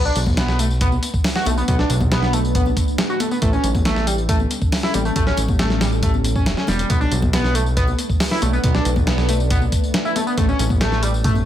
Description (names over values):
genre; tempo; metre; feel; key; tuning
breakbeat, breaks; 138 BPM; 4/4; straight; B minor; A4 = 442 Hz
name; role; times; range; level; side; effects
deep dark ambient pad; sustained chords; 1.0-11.5 s; G3 to B4; -27 LUFS; equal; chorus, built-in reverb, sidechain pumping
fat analog bass; bass; 0.0-11.4 s; E1 to B1; -20 LUFS; equal; none
overdriven synth lead; riff; 0.1-11.3 s; G3 to F#4; -23 LUFS; equal; distortion, lush chorus, ping-pong delay
tambourine; drums; 0.1-11.4 s; none; -33 LUFS; left 3 dB; none
dusty soul sampler-style drum kit; drums; 0.2-11.3 s; hi-hat, kick drum, snare drum; -20 LUFS; equal; none
congas; percussion; 0.2-11.4 s; none; -30 LUFS; left 4 dB; none
room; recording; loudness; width
digital ambience; none; -16 LUFS; side -11 dB against mid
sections
0.0-11.5 A section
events
none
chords
0.0 Bm7; 3.4 A7; 6.9 Bm7; 10.4 A7